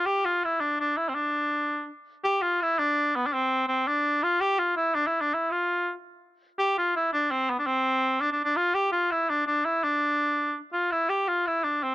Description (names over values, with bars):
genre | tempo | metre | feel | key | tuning
celtic folk | 111 BPM (dotted quarters) | 6/8 | straight | unclear | A4 = 440 Hz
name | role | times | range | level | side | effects
warm cor anglais | solo | 0.0-11.9 s | B3 to G4 | -24 LUFS | equal | none
room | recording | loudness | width
little or no reverb | dry, close 1970s-style studio recording | -24 LUFS | side -15 dB against mid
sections
0.0-2.2 A section; 2.2-10.9 A section; 10.9-11.9 B section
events
none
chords
none